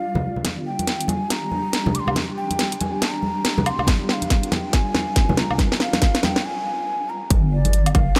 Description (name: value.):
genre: deep dubstep.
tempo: 140 BPM.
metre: 4/4.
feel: swing 61% on 16ths, half-time.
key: G phrygian.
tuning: A4 = 440 Hz.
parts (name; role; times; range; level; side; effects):
breathy mellow ney; melody; 0.0-8.2 s; D5 to D6; -30 LUFS; equal; dub echo.
granular cloud pad; sustained chords; 0.0-8.2 s; D3 to G4; -33 LUFS; equal; built-in reverb.
congas; percussion; 0.1-8.1 s; none; -29 LUFS; equal; none.
deep soft wobble bass; bass; 0.4-8.2 s; G1 to Ab1; -27 LUFS; equal; chorus, high-pass filter.
garage drum kit; drums; 0.4-8.2 s; handclaps, hi-hat, snare drum, woodblock; -25 LUFS; equal; none.
electronic kick drum; drums; 3.9-8.1 s; none; -21 LUFS; equal; none.
room: light reverb.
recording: none.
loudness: -21 LUFS.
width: mono.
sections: 0.4-7.3 A section.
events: build-up 0.4-7.3; drum fill 0.4-6.4; break 6.4-7.3.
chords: 0.4 Gm; 7.3 G5.